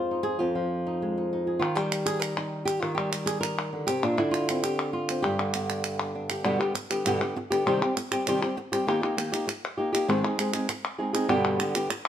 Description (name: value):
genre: flamenco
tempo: 198 BPM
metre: 4/4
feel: straight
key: G phrygian dominant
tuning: A4 = 440 Hz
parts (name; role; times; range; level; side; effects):
- flamenco guitar; melody; 0.0-11.9 s; F2 to Bb4; -26 LUFS; equal; none
- palmas hand claps; percussion; 1.6-12.1 s; none; -31 LUFS; equal; none
room: moderate stone room reverb, RT60 1.0 s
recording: none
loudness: -25 LUFS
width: side -10 dB against mid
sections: 0.0-6.5 A section; 6.5-11.3 B section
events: none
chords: 0.0 Fm7; 1.6 Eb; 4.0 Bbadd9 (rootless); 5.2 G; 7.7 Cm; 8.9 Eb; 10.1 Ab; 11.3 G